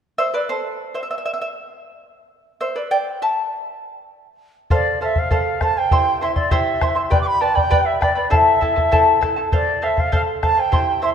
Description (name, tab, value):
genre	andean folk, Andean ensemble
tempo	100 BPM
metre	2/4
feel	straight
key	unclear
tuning	A4 = 439 Hz
part	charango	accompaniment	0.2-11.1 s	E4 to C6	-20 LUFS	left 1 dB	none
part	reedy large quena	melody	4.7-11.1 s	D5 to D6	-20 LUFS	right 2 dB	none
part	bombo	percussion	4.7-10.9 s	none	-21 LUFS	left 1 dB	none
room	moderate concert hall reverb, RT60 2.3 s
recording	minimal, uncompressed stereo recording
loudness	-16 LUFS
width	side -8 dB against mid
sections	0.0-4.7 A section; 4.7-11.1 B section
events	charango solo 0.0-4.7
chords	0.0 Amadd9; 1.1 N.C.; 2.3 Am11; 3.5 N.C.; 4.7 F; 5.9 C; 7.1 G; 8.3 Am; 9.5 F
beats	0.49 | 1.09 1.69 | 2.30 2.90 | 3.50 4.11 | 4.71 5.31 | 5.91 6.51 | 7.11 7.71 | 8.31 8.91 | 9.52 10.12 | 10.72